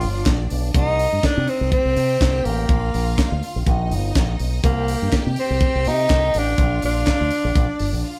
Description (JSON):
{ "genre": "disco", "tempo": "123 BPM", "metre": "4/4", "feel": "straight", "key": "C minor", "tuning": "A4 = 440 Hz", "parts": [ { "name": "breathy tenor saxophone", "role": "melody", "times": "0.0-8.2 s", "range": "Bb3 to F4", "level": "-24 LUFS", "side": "equal", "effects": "none" }, { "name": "clear studio string section", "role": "second line", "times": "0.0-8.2 s", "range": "D4 to G5", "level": "-35 LUFS", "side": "equal", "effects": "none" }, { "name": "fingered electric bass with an envelope filter", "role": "bass", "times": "0.0-8.0 s", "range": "G1 to C3", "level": "-25 LUFS", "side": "equal", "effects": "none" }, { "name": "tight funk drum kit", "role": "drums", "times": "0.0-7.9 s", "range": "handclaps, hi-hat, kick drum, snare drum", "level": "-24 LUFS", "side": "equal", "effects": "none" } ], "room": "moderate studio reverb, RT60 0.8 s", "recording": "band playing live in one room", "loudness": "-20 LUFS", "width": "mono", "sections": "0.0-8.2 A section", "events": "break 8.0", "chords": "0.0 G7#9; 0.7 Cm; 2.7 Bb5; 3.7 Eb; 4.6 Cm7; 6.6 Bb; 7.5 Gm", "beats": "0.26 | 0.74 1.23 1.71 2.20 | 2.69 3.17 3.66 4.14 | 4.63 5.12 5.60 6.09 | 6.58 7.06 7.55 8.04" }